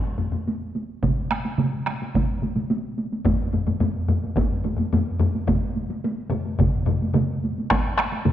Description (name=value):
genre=japanese traditional, taiko drum ensemble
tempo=108 BPM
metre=4/4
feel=straight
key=none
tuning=none
part: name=taiko ensemble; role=percussion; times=0.2-8.3 s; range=none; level=-27 LUFS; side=right 1 dB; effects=none
part: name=taiko ensemble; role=percussion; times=0.2-8.3 s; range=none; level=-24 LUFS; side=left 3 dB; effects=none
part: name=solo taiko drums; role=percussion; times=1.0-7.8 s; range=none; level=-27 LUFS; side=equal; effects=none
part: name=taiko ensemble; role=percussion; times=1.0-8.3 s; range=none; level=-26 LUFS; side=right 3 dB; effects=none
room=wet scoring stage reverb, RT60 1.6 s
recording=worn, warbling old tape, cassette tape, warbly pitch drift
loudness=-21 LUFS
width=side -11 dB against mid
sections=0.0-7.7 A section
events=none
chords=none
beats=0.47 | 1.02 1.58 2.14 2.70 | 3.25 3.81 4.37 4.93 | 5.48 6.04 6.59 7.15 | 7.71 8.26